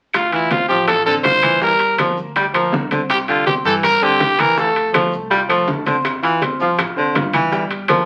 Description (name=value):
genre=latin, salsa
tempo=163 BPM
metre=4/4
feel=straight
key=F major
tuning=A4 = 440 Hz
part: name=upright bass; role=bass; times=0.1-8.0 s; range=F1 to G2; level=-36 LUFS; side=equal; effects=none
part: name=bongos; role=percussion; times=0.1-8.1 s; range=none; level=-28 LUFS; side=equal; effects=none
part: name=claves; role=percussion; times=0.1-8.1 s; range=none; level=-29 LUFS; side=equal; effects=none
part: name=congas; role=percussion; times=0.1-8.1 s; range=none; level=-30 LUFS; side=equal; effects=none
part: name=maracas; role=percussion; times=0.1-8.1 s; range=none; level=-49 LUFS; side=equal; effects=none
part: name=timbales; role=percussion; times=0.1-8.1 s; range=none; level=-26 LUFS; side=equal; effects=none
part: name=growling trumpet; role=melody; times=0.2-4.9 s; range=E4 to C5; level=-18 LUFS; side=equal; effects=none
part: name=edgy baritone saxophone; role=second line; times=0.3-8.1 s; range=D3 to G3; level=-21 LUFS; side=equal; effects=none
part: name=bright grand piano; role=accompaniment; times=0.3-8.1 s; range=G3 to G6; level=-26 LUFS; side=equal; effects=none
room=moderate studio reverb, RT60 0.6 s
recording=very old 78 rpm record, vinyl crackle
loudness=-17 LUFS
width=mono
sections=0.1-8.1 A section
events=none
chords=0.1 F; 1.6 Gm7; 3.1 C; 4.6 F; 7.5 Gm7